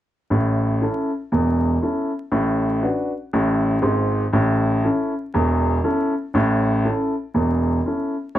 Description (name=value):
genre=jazz, stride piano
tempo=119 BPM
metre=4/4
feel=swing 61% on 8ths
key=A major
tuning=A4 = 442 Hz
part: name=warm baby grand piano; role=solo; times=0.3-8.4 s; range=E1 to C#5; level=-18 LUFS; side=equal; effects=none
room=moderate studio reverb, RT60 0.6 s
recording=vinyl crackle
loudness=-18 LUFS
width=side -12 dB against mid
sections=0.3-8.4 A section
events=none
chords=0.3 A; 2.3 Bm7/A; 4.3 A